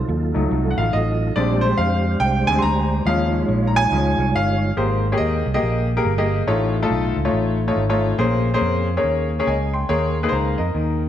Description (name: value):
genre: gospel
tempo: 141 BPM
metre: 4/4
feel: swing 62% on 8ths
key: Ab major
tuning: A4 = 440 Hz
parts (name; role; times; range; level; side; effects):
- mellow tonewheel organ; sustained chords; 0.0-4.7 s; Gb3 to Db5; -24 LUFS; right 2 dB; slow rotary speaker, chorus vibrato
- fingered electric bass; bass; 0.0-11.1 s; G1 to F2; -21 LUFS; equal; none
- clear grand piano; accompaniment; 0.3-11.1 s; Ab2 to C6; -20 LUFS; left 2 dB; none
room: moderate scoring stage reverb, RT60 1.7 s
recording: none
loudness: -17 LUFS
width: side -10 dB against mid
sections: 0.0-4.8 A section; 4.8-11.1 B section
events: grand piano solo 0.0-4.8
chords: 0.0 F7b9; 1.4 Bb13; 3.1 Eb9sus4; 4.8 Abmaj9; 6.5 F7alt/A; 8.2 Bbm9; 9.9 Eb7sus4